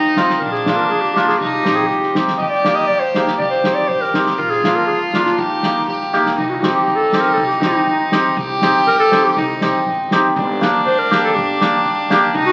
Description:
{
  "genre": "klezmer",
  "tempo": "121 BPM",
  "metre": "2/4",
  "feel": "straight",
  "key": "Eb major, C minor from 6.4 s",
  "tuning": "A4 = 440 Hz",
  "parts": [
    { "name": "clear clarinet", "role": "melody", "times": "0.0-12.5 s", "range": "Eb4 to Eb5", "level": "-21 LUFS", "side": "equal", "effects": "none" },
    { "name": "clear violin", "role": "second line", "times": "0.0-12.5 s", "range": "D4 to G4", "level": "-23 LUFS", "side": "equal", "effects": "none" },
    { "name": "upright bass", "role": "bass", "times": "0.0-12.5 s", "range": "G1 to G2", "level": "-35 LUFS", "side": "equal", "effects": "none" },
    { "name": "soft-mallet drum kit", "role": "drums", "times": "0.0-12.5 s", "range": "kick drum, snare drum", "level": "-26 LUFS", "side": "equal", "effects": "none" },
    { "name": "hammered dulcimer", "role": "accompaniment", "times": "0.2-12.2 s", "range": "Bb3 to G4", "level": "-20 LUFS", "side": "equal", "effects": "none" }
  ],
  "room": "wet large studio reverb, RT60 1.2 s",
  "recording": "very old 78 rpm record, vinyl crackle",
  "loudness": "-16 LUFS",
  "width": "mono",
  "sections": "0.0-6.4 A section; 6.4-12.5 B section",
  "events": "drum fill 6.1",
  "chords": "0.4 Bb; 1.4 Cm; 2.4 Eb; 3.4 Cm; 4.4 Bb; 5.4 Eb; 6.4 Cm; 10.4 Gm"
}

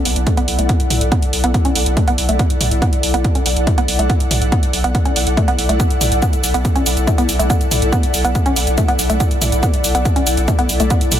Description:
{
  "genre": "driving peak-time techno",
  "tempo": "141 BPM",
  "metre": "4/4",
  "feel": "straight",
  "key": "B minor",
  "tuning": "A4 = 439 Hz",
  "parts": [
    { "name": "ethereal airy pad", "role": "texture", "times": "0.0-11.2 s", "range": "B3 to F#5", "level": "-21 LUFS", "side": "left 1 dB", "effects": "ensemble chorus, built-in reverb, sidechain pumping" },
    { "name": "saturated sub bass", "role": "bass", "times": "0.1-11.2 s", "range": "B1", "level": "-19 LUFS", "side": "equal", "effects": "tube saturation, sidechain pumping, low-pass filter" },
    { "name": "techno drum kit", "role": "drums", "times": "0.1-11.2 s", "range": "hi-hat, shaker, toms", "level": "-21 LUFS", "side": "right 1 dB", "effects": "sidechain pumping on hats, sidechain pumping on cymbals, sidechain pumping on toms, sidechain pumping on perc" },
    { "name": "woody wave-folded pluck", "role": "riff", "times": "0.3-11.0 s", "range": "A3 to C#4", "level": "-21 LUFS", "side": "right 1 dB", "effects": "chorus, sidechain pumping, digital delay" },
    { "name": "electronic kick drum", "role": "drums", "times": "0.3-11.0 s", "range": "none", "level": "-16 LUFS", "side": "equal", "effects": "none" }
  ],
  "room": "light reverb",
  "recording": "none",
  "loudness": "-13 LUFS",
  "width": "side -10 dB against mid",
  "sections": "0.0-11.2 A section",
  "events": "none",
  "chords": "0.0 Bm"
}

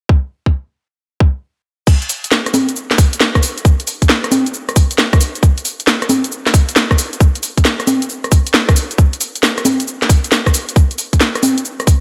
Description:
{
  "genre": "UK garage",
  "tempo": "135 BPM",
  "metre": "4/4",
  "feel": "swing 66% on 16ths",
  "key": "none",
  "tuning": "none",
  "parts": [
    { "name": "electronic kick drum", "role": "drums", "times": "0.1-12.0 s", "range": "none", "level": "-13 LUFS", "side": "equal", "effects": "none" },
    { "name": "garage drum kit", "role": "drums", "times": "1.9-12.0 s", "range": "cabasa, congas, crash cymbal, hi-hat, rim click, snare drum", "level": "-17 LUFS", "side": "equal", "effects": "low-pass filter on cymbals, low-pass filter on perc, low-pass filter on hats, low-pass filter on snare, low-pass filter on room" }
  ],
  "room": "light reverb",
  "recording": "none",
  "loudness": "-14 LUFS",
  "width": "mono",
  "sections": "0.0-1.9 A section; 1.9-12.0 B section",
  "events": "stop 1.4-1.9; drop 1.9-12.0",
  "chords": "none"
}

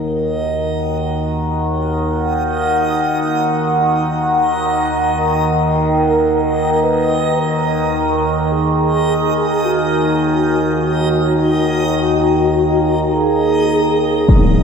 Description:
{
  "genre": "dark ambient drone",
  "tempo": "free time",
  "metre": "none",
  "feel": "none",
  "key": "Eb minor",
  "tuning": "A4 = 441 Hz",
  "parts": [
    { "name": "dark analog pad", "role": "sustained chords", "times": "0.0-14.6 s", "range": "Eb4 to Bb5", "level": "-19 LUFS", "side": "equal", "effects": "chorus, phaser" },
    { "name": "overtone-sweeping drone", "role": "drone", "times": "0.0-14.6 s", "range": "Eb2 to Eb3", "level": "-18 LUFS", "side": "equal", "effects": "chorus, built-in reverb, phaser" },
    { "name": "backwards swelling texture", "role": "texture", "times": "0.0-14.3 s", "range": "Eb5", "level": "-27 LUFS", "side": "right 2 dB", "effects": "built-in reverb" },
    { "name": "mellow horn-like synth lead", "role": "melody", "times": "5.1-14.6 s", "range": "Gb4 to Cb5", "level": "-18 LUFS", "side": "right 1 dB", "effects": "wide subtle chorus, tape echo" },
    { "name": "impact", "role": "percussion", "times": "14.3-14.5 s", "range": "none", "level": "-9 LUFS", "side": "equal", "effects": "low-pass filter on sfx" }
  ],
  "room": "wet plate reverb, RT60 2.7 s",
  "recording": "dreamy mix soaked in reverb",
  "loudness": "-14 LUFS",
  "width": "side -6 dB against mid",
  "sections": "0.0-14.3 A section",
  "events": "fade-in on synth texture 0.0-14.3",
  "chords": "0.0 Ebm"
}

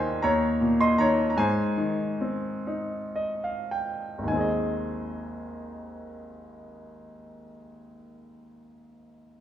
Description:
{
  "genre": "classical, lyrical solo piano",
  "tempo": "32-54 BPM (dotted quarters)",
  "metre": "6/8",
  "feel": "rubato",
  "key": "Ab major",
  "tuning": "A4 = 442 Hz",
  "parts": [
    { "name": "bright grand piano", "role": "solo", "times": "0.0-9.4 s", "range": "Ab1 to C6", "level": "-25 LUFS", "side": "equal", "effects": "none" }
  ],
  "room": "moderate recital hall reverb, RT60 1.6 s",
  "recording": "recorded in a church or concert hall",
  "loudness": "-24 LUFS",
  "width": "side -10 dB against mid",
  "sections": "0.0-4.3 A section; 4.3-9.4 B section",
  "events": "slowing down 0.0-4.3; grand piano fill 2.7-4.3",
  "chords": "0.2 Eb5; 1.4 Ab"
}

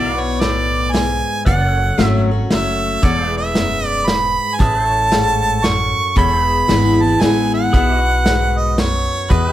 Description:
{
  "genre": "honky-tonk and classic country",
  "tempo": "115 BPM",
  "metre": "3/4",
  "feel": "swing 62% on 8ths",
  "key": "unclear",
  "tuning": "A4 = 440 Hz",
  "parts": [
    { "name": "bright harmonica", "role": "melody", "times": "0.0-9.5 s", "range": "B4 to C#6", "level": "-18 LUFS", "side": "right 2 dB", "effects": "none" },
    { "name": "picked steel-string acoustic guitar", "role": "accompaniment", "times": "0.0-9.5 s", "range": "E2 to F#4", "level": "-20 LUFS", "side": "left 4 dB", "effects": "none" },
    { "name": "pedal steel guitar", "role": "sustained chords", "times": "0.0-9.5 s", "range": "F#4 to F#5", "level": "-27 LUFS", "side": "left 1 dB", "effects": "none" },
    { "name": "upright bass", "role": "bass", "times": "0.0-9.5 s", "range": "E1 to E2", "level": "-20 LUFS", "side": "equal", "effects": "none" },
    { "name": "vintage drum kit", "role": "drums", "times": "0.4-9.5 s", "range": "hi-hat, kick drum, snare drum", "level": "-18 LUFS", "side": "equal", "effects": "none" }
  ],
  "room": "light reverb",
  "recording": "none",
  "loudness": "-14 LUFS",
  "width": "side -13 dB against mid",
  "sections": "0.0-9.5 A section",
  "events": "none",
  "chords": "0.0 Bm; 1.5 F#m; 3.0 E; 4.6 A; 6.2 E; 7.7 B"
}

